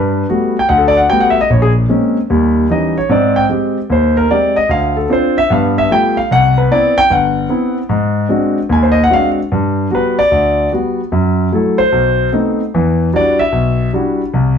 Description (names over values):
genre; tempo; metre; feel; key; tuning
solo jazz; 150 BPM; 4/4; swing 65% on 8ths; G major; A4 = 439 Hz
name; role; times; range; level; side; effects
warm concert grand piano; solo; 0.0-14.6 s; G1 to Ab5; -11 LUFS; equal; none
room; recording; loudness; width
wet studio reverb, RT60 0.7 s; heard from further back in the room; -11 LUFS; side -7 dB against mid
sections
0.0-9.5 A section; 9.5-14.6 A section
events
grand piano solo 0.0-9.5, 9.5-14.6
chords
0.0 Gmaj9; 1.5 Bbm9; 2.3 Eb7b9; 3.1 Abmaj7; 4.7 Dm7; 5.5 G9; 6.3 Cmaj7; 7.9 Ab7#11; 9.5 Gmaj7; 11.1 F#m7b5; 11.9 B7b9; 12.7 Em9